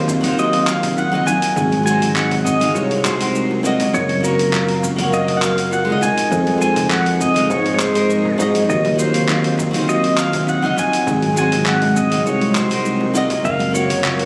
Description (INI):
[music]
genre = sunset chillout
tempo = 101 BPM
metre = 4/4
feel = swing 53% on 16ths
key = unclear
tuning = A4 = 440 Hz
[part]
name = pedal steel guitar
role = melody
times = 0.0-14.3 s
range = Bb4 to Ab5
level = -23 LUFS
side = equal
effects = tape echo
[part]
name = flamenco guitar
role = accompaniment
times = 0.0-14.3 s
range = Gb3 to F5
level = -26 LUFS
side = equal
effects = tape echo
[part]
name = airy breathy pad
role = sustained chords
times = 0.0-14.3 s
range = Eb3 to F5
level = -27 LUFS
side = equal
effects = chorus
[part]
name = buzzing kalimba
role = arpeggios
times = 0.0-14.3 s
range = C4 to C5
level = -26 LUFS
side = equal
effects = tape echo
[part]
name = sustaining fretless electric bass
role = bass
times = 0.0-14.3 s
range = Gb1 to Ab2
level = -24 LUFS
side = equal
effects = none
[part]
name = dusty soul sampler-style drum kit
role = drums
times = 0.1-14.3 s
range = cabasa, congas, handclaps, hi-hat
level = -26 LUFS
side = equal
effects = none
[part]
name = electronic kick drum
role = drums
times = 0.1-13.6 s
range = none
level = -32 LUFS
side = equal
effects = overdrive
[part]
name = bongos and congas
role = percussion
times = 0.1-14.2 s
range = none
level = -33 LUFS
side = equal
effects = none
[sound]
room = light reverb, digital ambience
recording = recorded on a phone in the room, club reverb, compression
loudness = -17 LUFS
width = mono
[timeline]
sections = 0.0-14.3 A section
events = none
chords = 0.0 Ebm69; 1.6 Ab7; 3.9 Gbmaj7; 6.0 Fm7; 8.7 Ebm69; 11.1 Ab7; 13.4 Gbmaj7